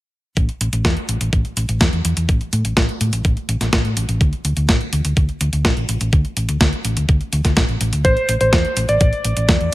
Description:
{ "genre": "italo disco", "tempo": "125 BPM", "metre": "4/4", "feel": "straight", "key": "A minor", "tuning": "A4 = 440 Hz", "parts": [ { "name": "hollow-body short-scale fingered electric bass", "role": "bass", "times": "0.4-9.7 s", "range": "A1 to A2", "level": "-19 LUFS", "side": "equal", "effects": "none" }, { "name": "clean 12-bit digital drum machine", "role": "drums", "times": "0.4-9.7 s", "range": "hi-hat, snare drum", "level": "-21 LUFS", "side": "equal", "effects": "overdrive" }, { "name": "electronic kick drum", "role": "drums", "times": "0.4-9.6 s", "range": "none", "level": "-17 LUFS", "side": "equal", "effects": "overdrive" }, { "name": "warm electric grand piano", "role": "melody", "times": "8.0-9.7 s", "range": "C5 to D5", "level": "-18 LUFS", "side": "equal", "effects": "ping-pong delay" } ], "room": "digital ambience", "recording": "none", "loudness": "-16 LUFS", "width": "side -17 dB against mid", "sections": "0.4-9.7 A section", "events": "none", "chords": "0.4 A5; 4.2 D5; 8.0 A5" }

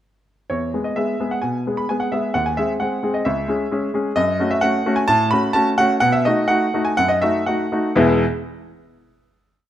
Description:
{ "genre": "classical-period piano sonatina", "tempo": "119-133 BPM", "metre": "4/4", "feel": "straight", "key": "E major", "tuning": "A4 = 440 Hz", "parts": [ { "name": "clear baby grand piano", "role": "solo", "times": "0.5-8.2 s", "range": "C#2 to B5", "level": "-17 LUFS", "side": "equal", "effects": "none" } ], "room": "moderate recital hall reverb, RT60 1.4 s", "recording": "close, detailed microphones", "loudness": "-17 LUFS", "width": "side -11 dB against mid", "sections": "0.5-8.0 A section; 8.0-9.7 final chord", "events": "slowing down 3.3-8.0", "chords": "0.5 E; 2.4 G#/D#; 3.3 C#m; 4.2 F#m; 5.1 F#m/A; 6.0 B7 (rootless); 8.0 E" }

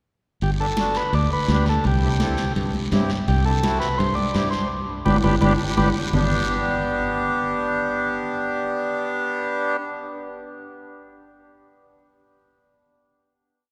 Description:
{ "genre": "latin, cumbia", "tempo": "168 BPM", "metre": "4/4", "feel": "straight", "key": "G major", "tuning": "A4 = 440 Hz", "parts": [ { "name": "combo organ", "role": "melody", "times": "0.4-5.9 s", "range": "G4 to D5", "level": "-28 LUFS", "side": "equal", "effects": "none" }, { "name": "fingered electric bass", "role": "bass", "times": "0.4-10.5 s", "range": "G1 to G2", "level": "-25 LUFS", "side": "equal", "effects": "none" }, { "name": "congas", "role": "percussion", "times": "0.4-6.2 s", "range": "none", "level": "-30 LUFS", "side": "equal", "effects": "none" }, { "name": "guiro", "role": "percussion", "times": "0.4-6.2 s", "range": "none", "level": "-38 LUFS", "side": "equal", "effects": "none" }, { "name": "timbales", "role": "percussion", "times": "0.4-6.2 s", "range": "none", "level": "-36 LUFS", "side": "equal", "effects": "none" }, { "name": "accordion", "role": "accompaniment", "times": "0.6-9.8 s", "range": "B3 to A4", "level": "-28 LUFS", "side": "equal", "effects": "none" } ], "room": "wet cathedral reverb, RT60 4.2 s", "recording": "recorded in a church or concert hall", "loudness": "-22 LUFS", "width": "mono", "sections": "0.4-6.1 A section; 6.1-9.0 final chord", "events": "band accent 4.7-6.1", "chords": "0.4 G; 1.8 C; 4.7 G" }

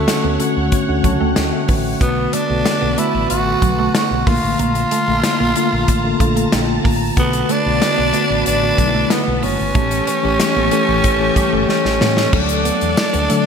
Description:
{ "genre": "1980s-style pop", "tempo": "93 BPM", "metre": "4/4", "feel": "straight", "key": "unclear", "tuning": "A4 = 439 Hz", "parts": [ { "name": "raspy tenor saxophone", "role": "melody", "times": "0.0-13.5 s", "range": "A3 to F#4", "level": "-19 LUFS", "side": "right 1 dB", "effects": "none" }, { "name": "mellow tine electric piano", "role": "accompaniment", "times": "0.0-13.5 s", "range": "D3 to Bb5", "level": "-20 LUFS", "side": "left 2 dB", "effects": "medium stereo tremolo" }, { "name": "string machine, violins", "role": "sustained chords", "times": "0.0-13.5 s", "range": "A4 to D6", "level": "-26 LUFS", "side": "equal", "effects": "ensemble chorus" }, { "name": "woody fretless electric bass", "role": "bass", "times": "0.0-13.5 s", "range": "F#1 to D3", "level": "-22 LUFS", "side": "equal", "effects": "analog chorus" }, { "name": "twelve-string electric guitar", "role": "riff", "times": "0.1-13.4 s", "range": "F3 to D4", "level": "-25 LUFS", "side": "right 4 dB", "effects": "wide subtle chorus" }, { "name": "modern studio drum kit", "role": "drums", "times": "0.1-13.4 s", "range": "crash cymbal, hi-hat, kick drum, snare drum, tambourine", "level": "-20 LUFS", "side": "equal", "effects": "gated reverb" } ], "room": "wet lush hall reverb, RT60 2.1 s", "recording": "bright 1980s-style digital production", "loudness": "-14 LUFS", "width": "side -6 dB against mid", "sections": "0.0-12.3 A section; 12.3-13.5 B section", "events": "tine electric piano fill 0.7-2.0, 6.2-7.2; drum fill 11.7-12.3", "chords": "0.0 Bm7; 4.3 Bbmaj7; 7.2 Bm7; 9.8 A7; 12.3 D" }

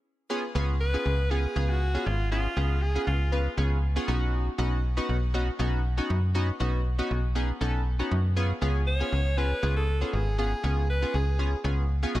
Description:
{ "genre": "dance-pop", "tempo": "119 BPM", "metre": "4/4", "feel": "straight", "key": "unclear", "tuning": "A4 = 438 Hz", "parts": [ { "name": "chorused retro synth keys", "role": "accompaniment", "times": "0.3-12.2 s", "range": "B3 to B4", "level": "-31 LUFS", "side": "equal", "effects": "none" }, { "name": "slap-like FM bass", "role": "bass", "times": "0.6-12.2 s", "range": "G#1 to F#2", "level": "-26 LUFS", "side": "equal", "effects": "none" }, { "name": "breathy alto saxophone", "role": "melody", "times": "0.8-3.5, 8.9-11.6 s", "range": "E#4 to C#5", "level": "-32 LUFS", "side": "equal", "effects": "diffuse ambient delay" } ], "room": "light reverb", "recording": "none", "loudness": "-25 LUFS", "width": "side -15 dB against mid", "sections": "0.3-12.2 A section", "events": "stop 0.0", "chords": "0.3 C#7; 4.1 Badd9; 8.4 C#7" }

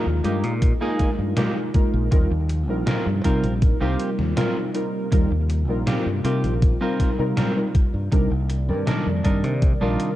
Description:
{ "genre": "vaporwave", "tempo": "80 BPM", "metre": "4/4", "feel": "straight", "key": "Eb major", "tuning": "A4 = 440 Hz", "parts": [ { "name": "warbly lo-fi synth keys", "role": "accompaniment", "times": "0.0-10.2 s", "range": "Eb3 to D5", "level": "-25 LUFS", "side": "equal", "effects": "wide subtle chorus, tape echo" }, { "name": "warbly tape-like pad", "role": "sustained chords", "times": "0.0-10.2 s", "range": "C3 to D5", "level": "-32 LUFS", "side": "left 1 dB", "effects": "none" }, { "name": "semi-hollow electric guitar", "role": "riff", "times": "0.0-10.1 s", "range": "Bb3 to Bb4", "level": "-30 LUFS", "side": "right 2 dB", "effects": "wide subtle chorus, tape echo" }, { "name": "fingered electric bass", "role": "bass", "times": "0.1-10.0 s", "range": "Bb1 to C3", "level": "-23 LUFS", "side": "equal", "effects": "none" }, { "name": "gated 80s digital drum machine", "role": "drums", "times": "0.2-10.2 s", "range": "hi-hat, snare drum", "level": "-27 LUFS", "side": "equal", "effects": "gated reverb, gated reverb snare, overdrive" }, { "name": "electronic kick drum", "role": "drums", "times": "0.6-9.8 s", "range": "none", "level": "-19 LUFS", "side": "equal", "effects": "overdrive" } ], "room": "light reverb, digital ambience", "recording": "dark, warm production, cassette tape", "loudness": "-19 LUFS", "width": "side -14 dB against mid", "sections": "0.0-10.2 A section", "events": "none", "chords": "0.0 Bb7sus4; 2.1 Eb69; 8.1 Cm9" }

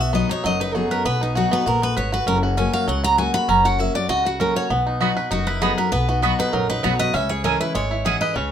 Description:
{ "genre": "bluegrass", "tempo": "197 BPM", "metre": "4/4", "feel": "straight", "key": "B major", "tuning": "A4 = 439 Hz", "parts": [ { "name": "picked steel-string acoustic guitar", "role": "melody", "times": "0.0-8.5 s", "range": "D#4 to B5", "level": "-22 LUFS", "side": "right 2 dB", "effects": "none" }, { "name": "picked steel-string acoustic guitar", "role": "accompaniment", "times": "0.0-8.5 s", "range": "F#2 to F#4", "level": "-25 LUFS", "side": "left 5 dB", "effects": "none" }, { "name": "bluegrass banjo", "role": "arpeggios", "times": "0.0-8.5 s", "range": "F#3 to B4", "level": "-24 LUFS", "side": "right 1 dB", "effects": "none" }, { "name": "upright bass", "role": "bass", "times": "0.0-8.5 s", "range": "F#1 to C#2", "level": "-26 LUFS", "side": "equal", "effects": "none" }, { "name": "mandolin", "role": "stabs", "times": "5.0-8.2 s", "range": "B3 to B5", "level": "-23 LUFS", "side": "right 6 dB", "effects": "none" } ], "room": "moderate studio reverb, RT60 0.5 s", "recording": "minimal, uncompressed stereo recording", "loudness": "-18 LUFS", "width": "side -9 dB against mid", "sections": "0.0-8.5 A section", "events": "none", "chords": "0.0 B; 2.3 F#; 4.7 B; 7.1 C#m" }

